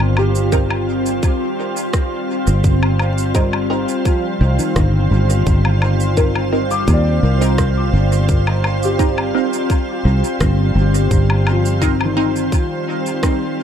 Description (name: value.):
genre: ambient dub.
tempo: 85 BPM.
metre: 4/4.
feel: straight.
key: C minor.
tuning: A4 = 444 Hz.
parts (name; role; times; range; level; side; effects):
soft additive organ-like pad; sustained chords; 0.0-13.6 s; G3 to C5; -20 LUFS; equal; ensemble chorus, built-in reverb.
felt-muted upright piano; arpeggios; 0.0-13.6 s; Eb3 to D6; -25 LUFS; left 2 dB; dub echo.
fingered electric bass; bass; 0.0-12.5 s; G1 to Eb2; -16 LUFS; equal; tube saturation.
electronic woodblock, shaker and rim click; drums; 0.0-13.4 s; none; -26 LUFS; left 1 dB; dub echo.
filtered dub chord stab; stabs; 0.5-12.3 s; C4 to Bb4; -24 LUFS; right 2 dB; phaser, wide subtle chorus, dub echo.
electronic kick drum; drums; 0.5-13.4 s; none; -17 LUFS; equal; none.
room: little or no reverb.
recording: echo-heavy mix.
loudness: -14 LUFS.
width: side -9 dB against mid.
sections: 0.0-13.6 A section.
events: filter sweep on felt piano 0.0-13.6.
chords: 0.0 Cm7.